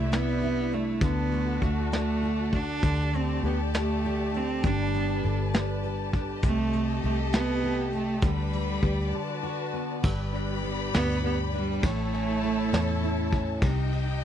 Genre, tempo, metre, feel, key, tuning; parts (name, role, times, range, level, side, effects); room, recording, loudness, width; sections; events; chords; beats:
six-eight pop ballad; 67 BPM (dotted quarters); 6/8; straight; G major; A4 = 440 Hz
clear cello; melody; 0.0-13.3 s; G3 to D4; -30 LUFS; right 3 dB
fingerpicked steel-string acoustic guitar; accompaniment; 0.0-14.2 s; G2 to A4; -32 LUFS; left 1 dB; double-tracked left and right
rich chamber string section; sustained chords; 0.0-14.2 s; Eb4 to B5; -34 LUFS; left 3 dB
vintage muted fingered electric bass; bass; 0.0-14.2 s; G1 to E2; -30 LUFS; equal
vintage brush drum kit; drums; 0.1-14.1 s; crash cymbal, hi-hat, kick drum, ride cymbal, snare drum; -28 LUFS; equal
little or no reverb; dry, close 1970s-style studio recording; -25 LUFS; side -10 dB against mid
0.0-10.0 A section; 10.0-14.2 B section
break 9.1-10.0
0.0 Cadd9; 1.0 D; 2.8 Dsus4; 4.6 Gadd9; 6.4 Cm6; 8.2 G/D; 9.1 D6; 10.0 G; 11.8 A; 13.6 Cm
0.12 | 1.01 1.92 | 2.83 3.74 | 4.64 5.54 | 6.43 7.33 | 8.23 9.13 | 10.04 10.94 | 11.83 12.73 | 13.62